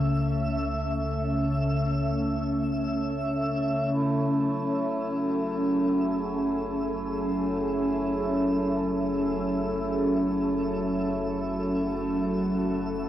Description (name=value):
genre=ambient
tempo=free time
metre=none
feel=none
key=unclear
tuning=A4 = 443 Hz
part: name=glassy FM pad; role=sustained chords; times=0.0-13.1 s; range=C#3 to E5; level=-25 LUFS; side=equal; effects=ensemble chorus, built-in reverb
part: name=warm sub bass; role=bass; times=0.0-13.1 s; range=F#1 to C#2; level=-39 LUFS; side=equal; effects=tube saturation
part: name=twinkling granular texture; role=texture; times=0.0-13.1 s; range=E5 to E6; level=-39 LUFS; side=equal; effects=built-in reverb
part: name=hand-pumped harmonium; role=drone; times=3.9-13.1 s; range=A3 to E4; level=-34 LUFS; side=equal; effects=none
room=wet studio ambience, RT60 0.5 s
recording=home recording on cassette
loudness=-24 LUFS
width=side -12 dB against mid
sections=0.0-3.9 A section; 3.9-13.1 B section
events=fade-in on synth texture 3.9-13.1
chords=0.0 A/C#; 3.9 F#m7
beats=free time